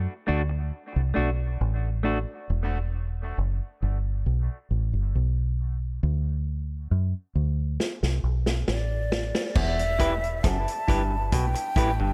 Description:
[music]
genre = dub reggae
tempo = 68 BPM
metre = 4/4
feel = straight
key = E minor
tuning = A4 = 440 Hz
[part]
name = deep dub fingered electric bass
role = bass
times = 0.0-12.1 s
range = E1 to F#2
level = -28 LUFS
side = equal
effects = none
[part]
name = semi-hollow electric guitar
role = accompaniment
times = 0.3-2.2, 10.0-11.9 s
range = A3 to B4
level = -33 LUFS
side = equal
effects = warbly pitch drift, dub echo
[part]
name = vintage drum kit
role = drums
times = 7.8-12.0 s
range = crash cymbal, hi-hat, kick drum, rim click, snare drum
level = -30 LUFS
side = equal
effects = none
[part]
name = breathy concert flute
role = melody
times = 8.7-12.1 s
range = D5 to A5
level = -32 LUFS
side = equal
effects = dub echo
[part]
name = overdriven clav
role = riff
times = 9.6-12.1 s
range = E2 to B2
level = -35 LUFS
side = equal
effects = dub echo
[part]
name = congas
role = percussion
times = 9.6-9.8 s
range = none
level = -45 LUFS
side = equal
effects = none
[sound]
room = little or no reverb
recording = echo-heavy mix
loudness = -27 LUFS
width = mono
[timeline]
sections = 0.0-9.6 A section; 9.6-12.1 B section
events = drum fill 7.8-9.6; part muted 9.6-12.1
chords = 0.0 D; 2.5 Em; 6.0 D5; 9.6 Em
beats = 0.72 1.60 | 2.49 3.37 4.25 5.14 | 6.02 6.90 7.79 8.67 | 9.55 10.44 11.32

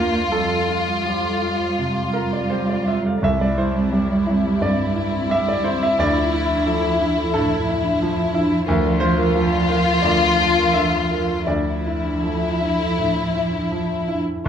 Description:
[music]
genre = neoclassical piano and strings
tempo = 80-91 BPM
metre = 4/4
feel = rubato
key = D minor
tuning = A4 = 441 Hz
[part]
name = rich chamber violin section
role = melody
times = 0.0-14.2 s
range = E4 to F4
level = -22 LUFS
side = left 3 dB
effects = none
[part]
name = warm cello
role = second line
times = 0.0-14.5 s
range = E3 to Bb3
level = -24 LUFS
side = right 3 dB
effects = none
[part]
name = clear grand piano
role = accompaniment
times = 0.0-14.5 s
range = C2 to F5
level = -22 LUFS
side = right 1 dB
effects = none
[part]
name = vibraphone with soft mallets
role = arpeggios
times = 0.0-14.5 s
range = C4 to F5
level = -27 LUFS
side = equal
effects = none
[sound]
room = wet large studio reverb, RT60 0.8 s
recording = band playing live in one room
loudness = -17 LUFS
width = side -8 dB against mid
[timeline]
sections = 0.0-14.4 A section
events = none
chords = 0.3 Fadd9; 3.2 C; 6.0 Dmadd9; 8.7 Bb/D; 11.5 Dmadd9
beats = | 0.32 1.05 1.78 2.51 | 3.23 3.93 4.61 5.29 | 5.98 6.66 7.33 8.00 | 8.67 9.34 10.03 10.74 | 11.48 12.23 12.97 13.71 | 14.45

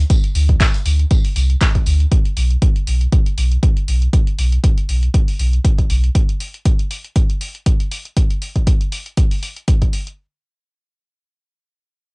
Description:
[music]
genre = acid house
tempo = 119 BPM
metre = 4/4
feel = swing 55% on 16ths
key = unclear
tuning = A4 = 440 Hz
[part]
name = warm sub bass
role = bass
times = 0.0-6.1 s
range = B1 to D2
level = -14 LUFS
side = equal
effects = sidechain pumping
[part]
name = electronic kick drum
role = drums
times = 0.1-9.9 s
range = none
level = -14 LUFS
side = equal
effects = cassette tape
[part]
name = punchy analog drum machine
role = drums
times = 0.1-10.2 s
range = handclaps, hi-hat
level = -26 LUFS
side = left 1 dB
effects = cassette tape
[part]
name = raw garage drum kit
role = drums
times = 0.1-2.0 s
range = hi-hat, snare drum, tambourine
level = -31 LUFS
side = equal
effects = sidechain pumping on hats, high-pass filter on hats, cassette tape, high-pass filter on snare, sidechain pumping on perc, high-pass filter on perc, high-pass filter on room
[sound]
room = little or no reverb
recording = home recording on cassette, nothing above 10.3 kHz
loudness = -14 LUFS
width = side -34 dB against mid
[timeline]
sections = 0.0-10.2 A section; 10.2-12.1 B section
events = none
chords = none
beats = | 0.10 0.60 1.11 1.61 | 2.12 2.62 3.12 3.63 | 4.13 4.64 5.14 5.64 | 6.15 6.65 7.16 7.66 | 8.17 8.67 9.18 9.68

